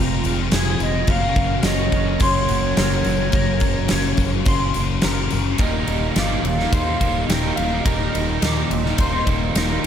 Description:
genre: rock, shoegaze and dream pop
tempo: 106 BPM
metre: 4/4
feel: straight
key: unclear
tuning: A4 = 440 Hz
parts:
  - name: mellow hollow silver concert flute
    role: melody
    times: 0.0-8.9 s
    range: Db5 to G5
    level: -27 LUFS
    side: right 1 dB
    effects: digital delay
  - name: string machine, full ensemble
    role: sustained chords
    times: 0.0-9.9 s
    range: F3 to F5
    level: -32 LUFS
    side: right 1 dB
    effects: ensemble chorus
  - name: electric guitar at the edge of break-up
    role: arpeggios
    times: 0.0-9.9 s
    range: Ab4 to D6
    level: -29 LUFS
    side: left 2 dB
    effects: ensemble chorus, digital delay
  - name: biting overdriven guitar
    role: riff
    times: 0.0-9.9 s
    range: Eb2 to Gb4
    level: -26 LUFS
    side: right 11 dB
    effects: reverse reverb
  - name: thick fuzz guitar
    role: riff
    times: 0.0-9.9 s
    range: Eb2 to Gb3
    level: -25 LUFS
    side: left 10 dB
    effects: distortion, ensemble chorus
  - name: fingered electric bass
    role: bass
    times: 0.0-9.9 s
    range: Eb1 to Eb2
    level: -24 LUFS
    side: equal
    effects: none
  - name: huge arena drum kit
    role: drums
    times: 0.2-9.9 s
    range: crash cymbal, kick drum, ride cymbal, snare drum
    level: -22 LUFS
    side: equal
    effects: none
  - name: tambourine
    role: percussion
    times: 0.2-9.7 s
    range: none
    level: -40 LUFS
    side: right 13 dB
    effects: none
room: light reverb, small room ambience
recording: none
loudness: -17 LUFS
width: side -9 dB against mid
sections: 0.0-5.6 A section; 5.6-9.9 B section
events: none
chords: 0.0 Fmadd9; 1.1 Gbmaj7; 5.6 Ebadd9

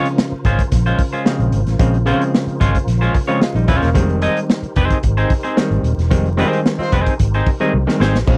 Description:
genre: funk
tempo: 111 BPM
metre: 4/4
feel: straight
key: unclear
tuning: A4 = 439 Hz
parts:
  - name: semi-hollow electric guitar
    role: accompaniment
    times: 0.0-8.2 s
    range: Ab3 to Eb5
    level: -22 LUFS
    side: equal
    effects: none
  - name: percussive tonewheel organ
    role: sustained chords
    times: 0.0-8.4 s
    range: Db3 to C5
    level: -31 LUFS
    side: equal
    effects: chorus vibrato, fast rotary speaker
  - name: overdriven clav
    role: stabs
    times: 0.0-8.4 s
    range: Db3 to F4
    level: -22 LUFS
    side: equal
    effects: none
  - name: crunchy breakbeat drum kit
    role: drums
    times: 0.1-8.4 s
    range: crash cymbal, hi-hat, kick drum, snare drum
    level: -19 LUFS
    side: equal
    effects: none
  - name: vintage muted fingered electric bass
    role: bass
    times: 0.3-8.4 s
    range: Eb1 to C2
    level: -20 LUFS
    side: equal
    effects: none
  - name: mellow horn section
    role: second line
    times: 6.4-7.0 s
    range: Ab3 to C5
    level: -24 LUFS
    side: equal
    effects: none
room: light reverb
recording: dry, close 1970s-style studio recording, vinyl crackle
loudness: -16 LUFS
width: mono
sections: 0.0-8.4 A section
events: band accent 6.1-8.3; drum fill 7.7-8.3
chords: 0.0 Bbm9; 4.0 Fm7

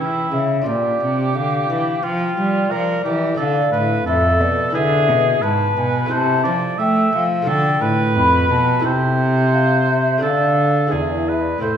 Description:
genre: classical, baroque-style sonata movement with continuo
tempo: 88 BPM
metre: 4/4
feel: straight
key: A minor from 3.4 s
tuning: A4 = 438 Hz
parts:
  - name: mellow hollow baroque flute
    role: melody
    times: 0.0-11.8 s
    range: A4 to B5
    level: -21 LUFS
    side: left 5 dB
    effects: none
  - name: warm oboe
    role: second line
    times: 0.0-11.8 s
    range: E4 to E5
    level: -21 LUFS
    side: right 3 dB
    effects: none
  - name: lute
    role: accompaniment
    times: 0.0-11.8 s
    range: E2 to D5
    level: -25 LUFS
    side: right 1 dB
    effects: none
  - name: rich cello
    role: bass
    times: 0.0-11.8 s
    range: E2 to A3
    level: -20 LUFS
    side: right 1 dB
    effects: none
room: wet recital hall reverb, RT60 1.4 s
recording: heard from further back in the room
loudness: -15 LUFS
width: side -8 dB against mid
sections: 0.0-11.8 A section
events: none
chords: 0.0 A7; 0.7 Bb; 3.4 Dm; 4.8 E7; 6.1 Am/C; 7.5 Dm; 8.9 Am/C; 10.2 Dm; 10.9 E

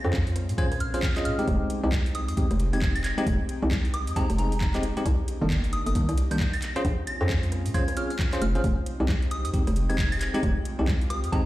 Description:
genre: UK garage, two-step garage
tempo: 134 BPM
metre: 4/4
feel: swing 61% on 16ths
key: F minor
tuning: A4 = 440 Hz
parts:
  - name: soft synth bell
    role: melody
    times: 0.0-11.5 s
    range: Bb5 to Bb6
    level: -35 LUFS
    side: right 1 dB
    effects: chorus, tape echo
  - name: airy breathy pad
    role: sustained chords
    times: 0.0-11.5 s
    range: Ab3 to G4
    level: -37 LUFS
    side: equal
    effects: chorus, sidechain pumping
  - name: bell-like tine electric piano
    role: stabs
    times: 0.0-11.4 s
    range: Eb3 to Eb5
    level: -30 LUFS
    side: equal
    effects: none
  - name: hollow knocking FM bass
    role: bass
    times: 0.0-11.3 s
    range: F1 to Bb2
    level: -26 LUFS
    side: equal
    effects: none
  - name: electronic kick drum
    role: drums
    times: 0.1-11.4 s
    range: none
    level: -26 LUFS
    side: equal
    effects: overdrive
  - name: garage drum kit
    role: drums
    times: 0.1-11.4 s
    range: handclaps, hi-hat, rim click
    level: -36 LUFS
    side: equal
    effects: overdrive
room: light reverb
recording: played on a big sound system in a bare room, large studio reverb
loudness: -23 LUFS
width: side -16 dB against mid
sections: 0.0-11.5 A section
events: none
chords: 0.0 Bbm7; 1.5 Fm7; 5.1 Cm7; 6.6 Bbm7 (rootless); 8.6 Fm7

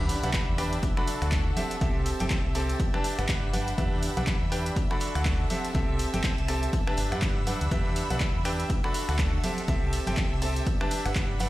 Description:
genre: piano house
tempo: 122 BPM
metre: 4/4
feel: swing 58% on 16ths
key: G major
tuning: A4 = 441 Hz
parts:
  - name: string machine, violins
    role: sustained chords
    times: 0.0-11.5 s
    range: E5 to E6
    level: -40 LUFS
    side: equal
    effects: ensemble chorus, sidechain pumping
  - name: bright concert grand piano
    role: riff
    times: 0.0-11.5 s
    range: C4 to B5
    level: -32 LUFS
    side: equal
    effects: sidechain pumping, tape echo
  - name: deep dub fingered electric bass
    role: bass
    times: 0.0-11.5 s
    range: G1 to G2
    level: -30 LUFS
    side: equal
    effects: sidechain pumping
  - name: sub drop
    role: sound effects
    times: 0.0-1.8 s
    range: none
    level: -36 LUFS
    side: equal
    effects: none
  - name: dark studio string section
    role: texture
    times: 0.0-11.5 s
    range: C4 to B5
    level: -38 LUFS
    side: right 1 dB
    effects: sidechain pumping
  - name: dusty soul sampler-style drum kit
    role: drums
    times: 0.1-11.5 s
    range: hi-hat, snare drum, tambourine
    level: -45 LUFS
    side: left 1 dB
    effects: none
  - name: punchy analog drum machine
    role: drums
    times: 0.1-11.5 s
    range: finger snaps, handclaps, hi-hat, ride cymbal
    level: -36 LUFS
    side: equal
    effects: overdrive
  - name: tambourine and congas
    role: percussion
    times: 0.1-11.5 s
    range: none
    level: -39 LUFS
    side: right 1 dB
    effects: none
  - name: electronic kick drum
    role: drums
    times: 0.3-11.3 s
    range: none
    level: -28 LUFS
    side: equal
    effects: overdrive
room: little or no reverb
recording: played on a big sound system in a bare room, stone room reverb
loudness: -25 LUFS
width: side -16 dB against mid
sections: 0.0-11.5 A section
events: impact 0.0-1.8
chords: 0.0 Em7; 0.8 D; 1.6 C6; 2.8 Gmaj7; 3.8 Em7; 4.8 D; 5.5 C6; 6.7 Gmaj7; 7.7 Em7; 8.7 D; 9.4 C6; 10.7 Gmaj7

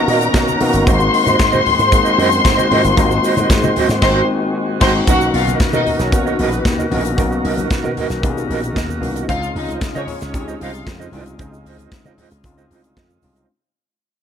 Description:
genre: disco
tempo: 114 BPM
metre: 4/4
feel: straight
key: Db major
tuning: A4 = 443 Hz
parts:
  - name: dark studio string section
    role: second line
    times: 0.0-10.8 s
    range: Cb4 to C6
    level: -18 LUFS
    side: left 2 dB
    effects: none
  - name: mellow electric guitar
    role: accompaniment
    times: 0.0-13.5 s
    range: F4 to Eb5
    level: -23 LUFS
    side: right 9 dB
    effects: tremolo
  - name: tine electric piano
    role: accompaniment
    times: 0.0-13.5 s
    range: Ab3 to Gb5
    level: -20 LUFS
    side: left 3 dB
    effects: none
  - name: tonewheel organ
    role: sustained chords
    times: 0.0-13.5 s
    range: Cb3 to Bb4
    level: -25 LUFS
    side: right 1 dB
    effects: overdrive, slow rotary speaker
  - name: slap bass with an envelope filter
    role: bass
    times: 0.1-13.4 s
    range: G1 to Db3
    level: -22 LUFS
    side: equal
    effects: none
  - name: modern studio drum kit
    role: drums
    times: 0.1-13.5 s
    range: crash cymbal, hi-hat, kick drum, snare drum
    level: -19 LUFS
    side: equal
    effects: none
  - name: egg shaker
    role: percussion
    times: 0.2-13.5 s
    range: none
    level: -36 LUFS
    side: right 12 dB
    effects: none
  - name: congas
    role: percussion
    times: 0.4-13.3 s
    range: none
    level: -28 LUFS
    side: left 3 dB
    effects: none
room: light reverb, small room ambience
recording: none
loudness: -13 LUFS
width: side -8 dB against mid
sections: 0.0-5.1 A section; 5.1-13.5 B section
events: tine electric piano fill 0.0-0.9; band accent 4.0-5.1; fade-out 5.1-13.5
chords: 0.0 Cbmaj7; 0.9 Ab7; 5.1 Cbmaj7; 9.3 Dbmaj9

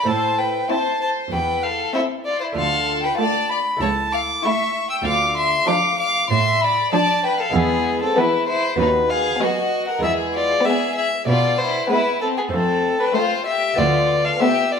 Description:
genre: classical, baroque-style concerto movement with solo episodes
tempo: 96 BPM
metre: 4/4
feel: straight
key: A minor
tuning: A4 = 440 Hz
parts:
  - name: clear chamber violin section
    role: melody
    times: 0.0-14.8 s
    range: B3 to G5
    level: -24 LUFS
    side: left 4 dB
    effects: none
  - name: rich violin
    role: melody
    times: 0.0-14.8 s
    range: G#4 to E6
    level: -20 LUFS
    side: left 1 dB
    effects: none
  - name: lute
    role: accompaniment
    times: 0.0-14.8 s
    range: D2 to F#4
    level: -28 LUFS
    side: right 2 dB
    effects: none
  - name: clear symphonic cello section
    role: bass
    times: 0.1-14.3 s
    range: C#2 to B2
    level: -24 LUFS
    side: right 4 dB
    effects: none
  - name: clear chamber violin section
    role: second line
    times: 0.7-14.8 s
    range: A3 to F4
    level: -24 LUFS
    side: left 2 dB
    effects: none
  - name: rich chamber viola section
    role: accompaniment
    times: 0.7-14.8 s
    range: E3 to C4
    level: -27 LUFS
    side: right 2 dB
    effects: none
room: moderate recital hall reverb, RT60 1.4 s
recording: minimal, uncompressed stereo recording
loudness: -17 LUFS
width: side -6 dB against mid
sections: 0.0-14.8 A section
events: none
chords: 0.1 Am; 2.6 Dm; 3.8 A/C#; 5.1 Dm; 7.5 E; 8.8 B/D#; 10.0 E; 12.5 F; 13.8 Bm7b5/D

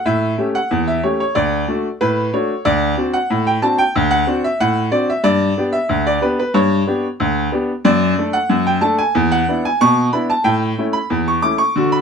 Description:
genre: ragtime piano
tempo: 92 BPM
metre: 2/4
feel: straight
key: D major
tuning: A4 = 440 Hz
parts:
  - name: clear upright piano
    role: solo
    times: 0.0-12.0 s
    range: D2 to D6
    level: -14 LUFS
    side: equal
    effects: none
room: moderate small room reverb, RT60 0.5 s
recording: none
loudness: -14 LUFS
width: side -6 dB against mid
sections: 0.0-12.0 A section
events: none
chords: 0.0 A7; 1.3 D; 2.6 D7; 5.2 G; 7.8 D/F#; 9.1 E5; 10.4 A

